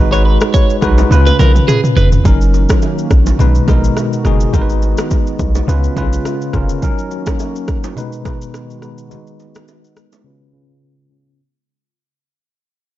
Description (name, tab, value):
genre	afrobeats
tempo	105 BPM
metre	4/4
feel	swing 55% on 16ths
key	F# major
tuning	A4 = 440 Hz
part	bell-like tine electric piano	accompaniment	0.0-11.4 s	B2 to C#5	-18 LUFS	left 2 dB	medium stereo tremolo, low-pass filter
part	hard-hitting 808-style bass	bass	0.0-6.7 s	E#1 to C#2	-12 LUFS	equal	none
part	twelve-string electric guitar	riff	0.1-2.1 s	G#4 to C#5	-19 LUFS	right 4 dB	phaser, ping-pong delay
part	deep house drum kit	drums	0.1-10.2 s	kick drum, rim click, shaker, toms	-15 LUFS	equal	overdrive
part	bongos and congas	percussion	0.5-10.2 s	none	-27 LUFS	right 8 dB	none
part	hollow soft pad	sustained chords	2.6-11.4 s	C#3 to F#4	-26 LUFS	right 2 dB	chorus, sidechain pumping, low-pass filter
room	digital ambience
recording	dark, warm production, nothing above 7.7 kHz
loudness	-11 LUFS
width	side -15 dB against mid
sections	0.0-2.3 A section; 2.3-11.4 B section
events	drum fill 1.1-2.3; fade-out 2.3-11.4; filter sweep 2.3-11.4; break 10.3-11.4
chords	0.0 G#m7; 1.1 C#7; 2.3 F#6; 3.4 B6; 4.5 G#m7; 5.7 C#7; 6.8 F#6; 8.0 B6; 9.1 G#m7; 10.3 C#7